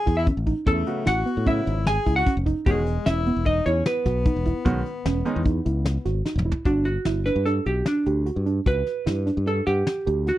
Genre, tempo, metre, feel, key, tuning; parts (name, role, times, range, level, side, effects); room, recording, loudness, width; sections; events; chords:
progressive instrumental, band music in an uneven meter; 150 BPM; 5/4; straight; A4 = 439 Hz
vintage hollow-body jazz guitar; melody; 0.0-10.4 s; D4 to G#5; -25 LUFS; right 2 dB
clear alto saxophone; second line; 0.0-6.2 s; G#3 to G#4; -30 LUFS; left 7 dB
soft round pluck; arpeggios; 0.1-10.4 s; B3 to F#5; -28 LUFS; right 4 dB; chorus
modern bright fingered electric bass; bass; 0.1-10.3 s; E1 to A2; -25 LUFS; left 1 dB
soft brush drum kit; drums; 0.1-10.4 s; hi-hat, kick drum, snare drum, toms; -24 LUFS; left 1 dB
clear grand piano; accompaniment; 0.9-5.4 s; C#3 to F#4; -30 LUFS; right 2 dB
light reverb; dry, close 1970s-style studio recording; -21 LUFS; side -14 dB against mid
0.0-6.7 A section; 6.7-10.4 B section
drum fill 6.3-6.7; hollow-body jazz guitar solo 6.7-10.4
0.0 Amaj7; 2.7 E; 6.7 Gmaj7